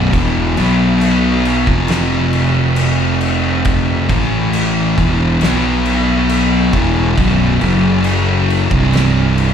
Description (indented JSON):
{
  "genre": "stoner and doom metal",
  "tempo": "68 BPM",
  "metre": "4/4",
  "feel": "straight",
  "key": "unclear",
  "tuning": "A4 = 439 Hz",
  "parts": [
    { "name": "thick fuzz guitar", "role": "riff", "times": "0.0-9.5 s", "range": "B1 to B3", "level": "-16 LUFS", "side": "left 5 dB", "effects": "distortion" },
    { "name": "thick fuzz guitar", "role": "riff", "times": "0.0-9.5 s", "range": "B1 to B3", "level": "-19 LUFS", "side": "right 14 dB", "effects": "distortion" },
    { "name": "fuzz fingered electric bass", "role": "bass", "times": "0.0-9.5 s", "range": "B0 to B1", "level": "-17 LUFS", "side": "equal", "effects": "overdrive" },
    { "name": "oversized low-tuned drum kit", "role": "drums", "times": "0.1-9.5 s", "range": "crash cymbal, kick drum, snare drum", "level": "-19 LUFS", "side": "equal", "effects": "none" }
  ],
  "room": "little or no reverb",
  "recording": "live gig heard through the venue's PA, club reverb",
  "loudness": "-12 LUFS",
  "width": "side -8 dB against mid",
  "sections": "0.0-9.5 A section",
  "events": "none",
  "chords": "0.1 E5; 0.6 B5; 1.7 F5; 4.1 A5; 5.0 E5; 5.4 B5; 6.7 E5; 7.2 B5; 7.6 F#5; 8.7 C5"
}